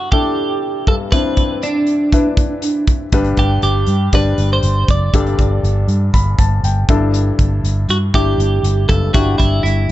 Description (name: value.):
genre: piano-driven pop.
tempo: 120 BPM.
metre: 4/4.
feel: straight.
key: G major.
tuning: A4 = 440 Hz.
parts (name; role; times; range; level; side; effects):
twelve-string electric guitar; melody; 0.0-9.9 s; D4 to D5; -19 LUFS; right 2 dB; none.
clear upright piano; accompaniment; 0.0-9.9 s; G2 to B5; -20 LUFS; left 3 dB; none.
modern studio drum kit; drums; 0.1-9.9 s; hi-hat, kick drum; -16 LUFS; equal; none.
vintage muted fingered electric bass; bass; 3.1-9.9 s; F#1 to G2; -15 LUFS; equal; none.
room: light reverb, small room ambience.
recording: dark, warm production, nothing above 7.9 kHz.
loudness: -13 LUFS.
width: side -14 dB against mid.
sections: 0.0-9.9 A section.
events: none.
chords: 0.0 Dsus2/G; 3.1 G; 6.9 Dsus2.